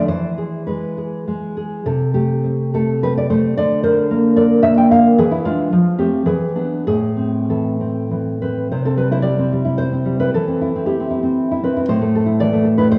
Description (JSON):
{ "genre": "romantic piece for solo classical guitar", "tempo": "93-120 BPM", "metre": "3/4", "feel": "rubato", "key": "A minor, C major from 8.7 s", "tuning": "A4 = 441 Hz", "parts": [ { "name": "nylon-string guitar", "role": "solo", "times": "0.0-13.0 s", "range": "A2 to G5", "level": "-17 LUFS", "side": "equal", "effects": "none" } ], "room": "wet scoring stage reverb, RT60 1.7 s", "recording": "worn, warbling old tape, cassette tape, warbly pitch drift, small room ambience", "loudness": "-18 LUFS", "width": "mono", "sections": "0.0-8.7 A section; 8.7-13.0 B section", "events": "none", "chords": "0.1 E; 1.9 Am/C; 3.6 Bb/D; 5.2 E7; 5.7 F; 6.3 E7; 6.9 Am; 8.7 C; 10.3 C/E; 11.9 Am", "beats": "| 0.10 0.69 1.28 | 1.87 2.45 3.02 | 3.57 4.11 4.65 | 5.18 5.73 6.28 | 6.88 7.51 8.14 | 8.73 9.28 9.81 | 10.34 10.87 11.38 | 11.89 12.40 12.90" }